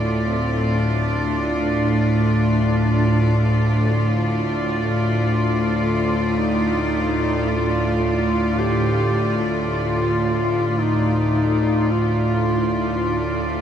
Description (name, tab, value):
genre	dark ambient drone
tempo	free time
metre	none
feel	none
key	unclear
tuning	A4 = 440 Hz
part	clear symphonic cello section	sustained chords	0.0-13.6 s	A3 to D5	-23 LUFS	left 1 dB	none
part	bowed-like drone	drone	0.0-13.6 s	D2 to A2	-20 LUFS	equal	built-in reverb
part	dark duduk	melody	0.2-13.6 s	C4 to G4	-25 LUFS	equal	diffuse ambient delay
room	wet huge ambient reverb, RT60 7.8 s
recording	in a vast, echoing space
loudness	-18 LUFS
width	side -9 dB against mid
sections	0.0-13.6 A section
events	none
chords	0.0 Dm